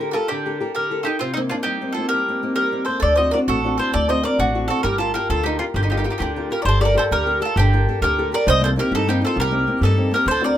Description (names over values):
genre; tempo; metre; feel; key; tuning
italian folk, Italian serenade; 132 BPM (dotted quarters); 6/8; straight; G minor; A4 = 439 Hz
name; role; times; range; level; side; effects
mandolin; melody; 0.0-10.6 s; Eb4 to Eb5; -21 LUFS; equal; none
bowl-back mandolin; second line; 0.0-10.6 s; C4 to C5; -26 LUFS; right 4 dB; none
nylon-string guitar; accompaniment; 0.0-10.6 s; C3 to Bb4; -24 LUFS; left 2 dB; none
upright bass; bass; 3.0-10.6 s; G1 to G2; -21 LUFS; equal; none
room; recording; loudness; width
light reverb; minimal, uncompressed stereo recording; -17 LUFS; side -11 dB against mid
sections
0.0-6.7 A section; 6.7-10.6 A section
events
none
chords
0.0 Gmadd9; 1.2 Cm7; 3.0 D7; 4.8 Gm7; 6.7 Gmadd9; 8.5 Cm7